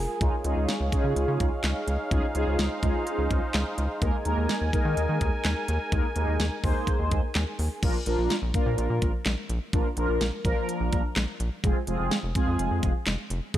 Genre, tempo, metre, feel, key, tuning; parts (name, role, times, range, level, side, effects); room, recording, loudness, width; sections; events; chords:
synth-pop; 126 BPM; 4/4; straight; A4 = 441 Hz
sweeping resonant pad; sustained chords; 0.0-7.8 s; Eb4 to Ab5; -32 LUFS; equal; chorus
rubbery square bass; bass; 0.0-13.6 s; F1 to Eb3; -28 LUFS; equal
mellow synth brass; accompaniment; 0.2-13.6 s; F3 to C5; -30 LUFS; equal; chorus, phaser
pop drum kit; drums; 0.2-13.6 s; crash cymbal, handclaps, hi-hat, kick drum, snare drum; -28 LUFS; equal
light reverb; -24 LUFS; side -12 dB against mid
0.0-7.8 A section; 7.8-13.6 A section
0.2 Dbadd9; 4.0 Ebsus4; 7.8 Bb; 11.6 Fm